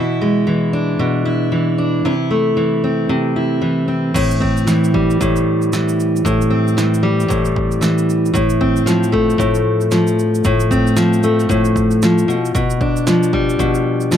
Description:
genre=acoustic pop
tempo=114 BPM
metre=4/4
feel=swing 60% on 16ths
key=unclear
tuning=A4 = 438 Hz
part: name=fingerpicked steel-string acoustic guitar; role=accompaniment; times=0.0-14.2 s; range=A2 to E4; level=-14 LUFS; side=equal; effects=none
part: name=punchy analog drum machine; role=drums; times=4.2-14.2 s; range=crash cymbal, kick drum, shaker, snare drum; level=-23 LUFS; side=right 2 dB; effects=overdrive
room=little or no reverb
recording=close, detailed microphones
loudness=-13 LUFS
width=side -9 dB against mid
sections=0.0-4.2 A section; 4.2-14.2 B section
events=none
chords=0.0 E7/B; 2.1 Am/C; 4.2 Am7; 8.4 F/A; 12.3 G7/B

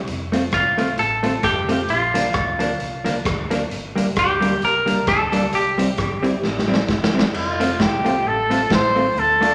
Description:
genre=ska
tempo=132 BPM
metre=4/4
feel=swing 56% on 8ths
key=F major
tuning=A4 = 440 Hz
part: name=vintage muted fingered electric bass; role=bass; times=0.0-9.5 s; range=F1 to D2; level=-34 LUFS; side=equal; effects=none
part: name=raw garage drum kit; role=drums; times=0.1-9.5 s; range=crash cymbal, hi-hat, kick drum, rim click, snare drum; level=-26 LUFS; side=equal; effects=slapback echo
part: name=vintage hollow-body jazz guitar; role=accompaniment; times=0.3-9.5 s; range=F3 to F4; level=-25 LUFS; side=equal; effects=none
part: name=semi-hollow electric guitar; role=melody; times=0.5-7.1 s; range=F4 to Bb4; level=-23 LUFS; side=equal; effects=none
part: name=warm trumpet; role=melody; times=7.4-9.5 s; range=F4 to C5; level=-20 LUFS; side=equal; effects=none
room=wet large studio reverb, RT60 1.2 s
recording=none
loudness=-20 LUFS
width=mono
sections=0.0-7.3 A section; 7.3-9.5 B section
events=drum fill 6.4-7.3; trumpet solo 7.3-9.5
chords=0.1 F; 1.9 Bb; 3.7 Gm; 5.5 C; 7.3 F

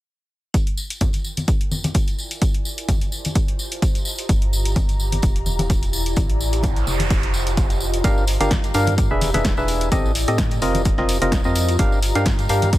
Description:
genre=piano house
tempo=128 BPM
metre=4/4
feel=swing 55% on 16ths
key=G minor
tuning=A4 = 441 Hz
part: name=electronic kick drum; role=drums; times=0.5-12.8 s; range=none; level=-20 LUFS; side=equal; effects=none
part: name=punchy analog drum machine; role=drums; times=0.5-12.8 s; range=hi-hat, snare drum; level=-28 LUFS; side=equal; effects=none
part: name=tambourine and congas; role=percussion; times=0.5-12.8 s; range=none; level=-28 LUFS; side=left 1 dB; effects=none
part: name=ethereal airy pad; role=texture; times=1.8-12.8 s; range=F4 to Bb5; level=-30 LUFS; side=left 1 dB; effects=ensemble chorus, built-in reverb, sidechain pumping
part: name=organ-like FM bass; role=bass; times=4.3-12.8 s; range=E1 to A2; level=-23 LUFS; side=equal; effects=sidechain pumping
part: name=noise sweep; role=sound effects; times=6.4-8.0 s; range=none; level=-30 LUFS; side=right 5 dB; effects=none
part: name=percussive organ stab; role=riff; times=8.0-12.7 s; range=C4 to F5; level=-22 LUFS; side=equal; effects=chorus, vintage 12-bit sampler grit, sidechain pumping, digital delay
room=digital ambience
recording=none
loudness=-18 LUFS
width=side -16 dB against mid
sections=0.5-8.0 A section; 8.0-12.8 B section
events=fade-in on ambient pad 0.5-8.0; noise sweep 6.4-8.0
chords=0.5 Gm7; 1.5 E7; 2.4 Gsus24; 3.1 F7sus4; 4.3 Gm7; 5.2 E7; 6.2 Am7; 6.9 F7sus4; 8.0 Gm7; 9.0 E7; 9.9 Am7b5; 10.6 F7sus4; 11.8 Gm7

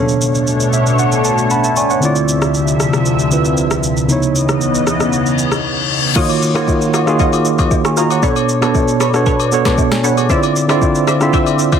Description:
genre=amapiano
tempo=116 BPM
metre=4/4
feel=straight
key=unclear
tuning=A4 = 435 Hz
part: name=tine electric piano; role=accompaniment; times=0.0-11.8 s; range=B2 to C#6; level=-14 LUFS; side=right 2 dB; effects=medium stereo tremolo
part: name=lush unison pad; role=sustained chords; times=0.0-6.1 s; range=D2 to E5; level=-17 LUFS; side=left 2 dB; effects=chorus, phaser, sidechain pumping
part: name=smooth R&B drum kit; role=drums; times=0.1-11.8 s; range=crash cymbal, kick drum, rim click, shaker, snare drum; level=-19 LUFS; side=equal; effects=overdrive, soft clipping on snare
part: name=reverse cymbal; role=sound effects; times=5.3-6.2 s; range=none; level=-19 LUFS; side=left 8 dB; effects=none
part: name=punchy chord stab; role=stabs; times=6.2-11.8 s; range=D4 to E5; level=-20 LUFS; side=left 2 dB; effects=chorus, phaser, digital delay
part: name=agogo bells and woodblock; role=percussion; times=6.3-11.8 s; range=none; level=-24 LUFS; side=left 13 dB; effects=none
room=light reverb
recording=dense, heavily limited modern master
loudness=-12 LUFS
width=side -8 dB against mid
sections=0.0-6.2 A section; 6.2-11.8 B section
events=tine electric piano fill 0.5-2.0; reverse cymbal 5.3-6.2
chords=0.0 Bm9; 2.0 Dm9; 4.1 Dbm9; 6.2 Ebm9; 8.2 Bm9; 10.3 Dm9

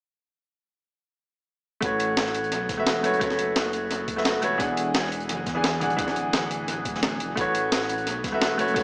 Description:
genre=liquid drum and bass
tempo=173 BPM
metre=4/4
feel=straight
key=A major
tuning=A4 = 439 Hz
part: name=clear grand piano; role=accompaniment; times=1.8-8.8 s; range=E3 to G#5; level=-27 LUFS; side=equal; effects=dub echo
part: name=dark detuned saw bass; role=bass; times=1.8-8.8 s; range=D1 to E2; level=-36 LUFS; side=equal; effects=none
part: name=breakbeat sampler-style drum kit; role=drums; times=1.8-8.8 s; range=hi-hat, snare drum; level=-31 LUFS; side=equal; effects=analog delay
part: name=crunchy breakbeat drum kit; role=drums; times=1.8-8.8 s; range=hi-hat, snare drum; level=-36 LUFS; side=equal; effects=high-pass filter on hats, high-pass filter on snare, high-pass filter on room, analog delay
part: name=electronic kick drum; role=drums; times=1.8-8.8 s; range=none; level=-39 LUFS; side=equal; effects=none
room=wet echo chamber reverb, RT60 1.8 s, small room ambience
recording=echo-heavy mix, small speaker sound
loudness=-25 LUFS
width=mono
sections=1.8-8.8 A section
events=none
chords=1.8 A69; 4.6 E9; 7.4 A69

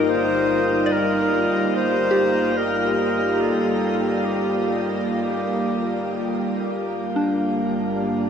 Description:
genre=ambient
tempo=72 BPM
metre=4/4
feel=straight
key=unclear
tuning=A4 = 440 Hz
part: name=warm analog pad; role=sustained chords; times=0.0-8.3 s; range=G3 to A5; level=-23 LUFS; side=right 1 dB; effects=lush chorus
part: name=soft synth bell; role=arpeggios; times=0.0-8.3 s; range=D4 to D5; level=-27 LUFS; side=left 2 dB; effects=chorus, phaser, diffuse ambient delay
part: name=muted symphonic double bass section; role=bass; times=0.0-8.3 s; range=G1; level=-40 LUFS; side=equal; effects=none
part: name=glass harmonica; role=texture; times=0.0-8.3 s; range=F4 to F5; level=-28 LUFS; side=left 1 dB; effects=none
part: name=warm clarinet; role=melody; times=0.1-6.3 s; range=G4 to C5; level=-24 LUFS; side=left 1 dB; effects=diffuse ambient delay
part: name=organ-like drone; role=drone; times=7.5-8.3 s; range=G3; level=-30 LUFS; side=equal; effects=ensemble chorus, built-in reverb
room=wet shimmer reverb, RT60 8.5 s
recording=none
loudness=-19 LUFS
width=side -7 dB against mid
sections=0.0-6.7 A section; 6.7-8.3 B section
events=fade-out on double bass section 0.0-6.7; filter sweep on analog synth pad 0.0-6.7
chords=0.0 Ebmaj7/G; 6.7 Gm9

